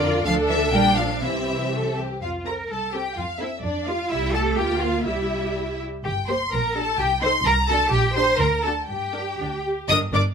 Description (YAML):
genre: quick classical-period movement for string orchestra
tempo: 119-130 BPM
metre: 2/4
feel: rubato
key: F major, G minor from 6.1 s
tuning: A4 = 440 Hz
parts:
  - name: warm symphonic violin section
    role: melody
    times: 0.0-10.2 s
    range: D5 to Eb6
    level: -27 LUFS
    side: left 4 dB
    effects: none
  - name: warm symphonic violin section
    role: second line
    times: 0.0-10.2 s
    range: D4 to C6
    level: -27 LUFS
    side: left 1 dB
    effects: none
  - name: warm symphonic viola section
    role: accompaniment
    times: 0.0-10.2 s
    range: G3 to Bb4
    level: -27 LUFS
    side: right 1 dB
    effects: none
  - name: warm symphonic cello section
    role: bass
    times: 0.0-10.2 s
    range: G2 to C5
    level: -26 LUFS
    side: right 2 dB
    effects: none
  - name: warm symphonic double bass section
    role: bass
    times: 0.0-10.2 s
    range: G1 to G2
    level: -28 LUFS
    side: right 2 dB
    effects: none
room: light reverb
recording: minimal, uncompressed stereo recording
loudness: -20 LUFS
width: side -6 dB against mid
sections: 0.0-2.2 A section; 2.2-9.9 B section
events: none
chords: 0.3 D5; 0.7 Bb; 1.2 C; 2.2 F; 3.6 Gm7/F; 4.1 C; 4.6 Bb/D; 5.1 C; 6.1 Gm; 6.5 Gm/Bb; 7.0 Am7b5/C; 7.5 D7/C; 7.9 Gm/Bb; 8.4 D; 8.9 Gm